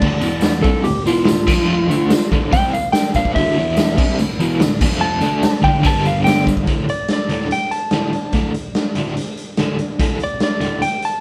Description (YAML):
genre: garage rock duo or trio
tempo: 144 BPM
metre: 4/4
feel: straight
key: D minor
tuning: A4 = 437 Hz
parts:
  - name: electric slide guitar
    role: melody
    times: 0.0-11.2 s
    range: F4 to A5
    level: -22 LUFS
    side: equal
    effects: none
  - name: crunchy overdriven guitar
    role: riff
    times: 0.0-10.8 s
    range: D2 to D4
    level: -21 LUFS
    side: equal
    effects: tremolo
  - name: raw garage drum kit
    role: drums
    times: 0.0-11.1 s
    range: crash cymbal, hi-hat, kick drum, snare drum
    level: -21 LUFS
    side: equal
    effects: vintage 12-bit sampler grit
  - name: tambourine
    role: percussion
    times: 0.2-6.6 s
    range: none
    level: -39 LUFS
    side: equal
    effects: none
room: moderate studio reverb, RT60 0.6 s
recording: band playing live in one room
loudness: -17 LUFS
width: mono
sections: 0.0-6.7 A section; 6.7-11.2 B section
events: electric slide guitar solo 0.0-6.7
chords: 0.0 D5; 0.3 E5; 0.7 Dm; 1.5 F5; 1.9 Dm; 3.6 E5; 4.0 D5; 4.8 F5; 5.2 D5; 5.8 G5; 6.7 D5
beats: | 0.04 0.46 0.87 1.29 | 1.70 2.12 2.53 2.95 | 3.36 3.78 4.19 4.61 | 5.02 5.43 5.85 6.26 | 6.68 7.09 7.51 7.93 | 8.34 8.76 9.18 9.59 | 10.01 10.42 10.84